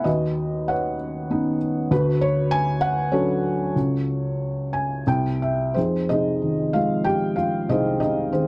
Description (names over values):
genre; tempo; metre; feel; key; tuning
classical, lyrical solo piano; 85-99 BPM; 3/4; rubato; unclear; A4 = 440 Hz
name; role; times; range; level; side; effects
felt-muted upright piano; solo; 0.0-8.5 s; B#1 to G#5; -20 LUFS; equal; none
room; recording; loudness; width
light reverb; dark, warm production; -20 LUFS; side -26 dB against mid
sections
0.0-5.8 A section; 5.8-8.5 B section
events
felt piano fill 4.4-5.8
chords
0.1 Badd9/D#; 1.9 Dmaj7; 3.8 F#madd9/C#; 5.1 N.C.; 5.8 Fm7